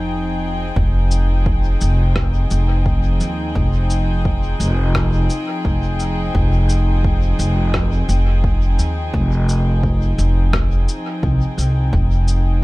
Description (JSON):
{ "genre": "ambient dub", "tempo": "86 BPM", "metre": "4/4", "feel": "swing 54% on 16ths", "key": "F minor", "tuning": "A4 = 440 Hz", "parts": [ { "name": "warm chamber string section", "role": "sustained chords", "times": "0.0-12.6 s", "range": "F3 to G5", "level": "-24 LUFS", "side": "left 1 dB", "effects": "none" }, { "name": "upright bass", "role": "bass", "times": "0.0-12.6 s", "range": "F1 to Eb2", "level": "-16 LUFS", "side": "equal", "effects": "none" }, { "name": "electronic kick drum", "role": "drums", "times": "0.8-12.1 s", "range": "none", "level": "-21 LUFS", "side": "equal", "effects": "overdrive" }, { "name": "electronic cabasa and rim click", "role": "drums", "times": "1.1-12.4 s", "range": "none", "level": "-27 LUFS", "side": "left 1 dB", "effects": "dub echo" } ], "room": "little or no reverb", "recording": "echo-heavy mix", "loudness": "-15 LUFS", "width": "side -20 dB against mid", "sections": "0.8-12.6 A section", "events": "none", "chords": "0.0 Fm7", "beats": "0.07 | 0.77 1.46 2.16 2.86 | 3.56 4.25 4.95 5.65 | 6.35 7.04 7.74 8.44 | 9.14 9.84 10.53 11.23 | 11.93 12.63" }